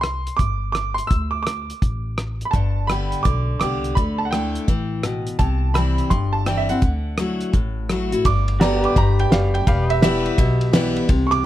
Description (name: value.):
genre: honky-tonk and classic country.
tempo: 168 BPM.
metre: 4/4.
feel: swing 64% on 8ths.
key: G major.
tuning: A4 = 439 Hz.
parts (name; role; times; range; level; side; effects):
bright upright piano; second line; 0.0-11.4 s; E5 to E6; -25 LUFS; right 5 dB; none.
upright bass; bass; 0.0-11.5 s; E1 to D2; -23 LUFS; equal; none.
cloth-damped thuddy drum kit; drums; 0.0-11.4 s; hi-hat, kick drum, ride cymbal, rim click, snare drum; -20 LUFS; equal; none.
picked steel-string acoustic guitar; accompaniment; 2.5-11.5 s; E2 to G4; -23 LUFS; left 3 dB; none.
warm concert grand piano; accompaniment; 8.6-11.0 s; G4 to E5; -28 LUFS; right 6 dB; none.
pedal steel guitar; sustained chords; 8.6-11.1 s; G4 to E5; -26 LUFS; left 3 dB; none.
room: little or no reverb.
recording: dark, warm production.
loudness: -18 LUFS.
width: side -13 dB against mid.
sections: 0.0-8.2 A section; 8.2-11.5 B section.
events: upright piano solo 0.0-8.2, 8.2-11.5.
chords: 0.0 C5; 1.1 D5; 2.5 G; 4.0 Dsus2; 5.4 C; 6.8 Dadd9; 8.2 G; 9.7 Em.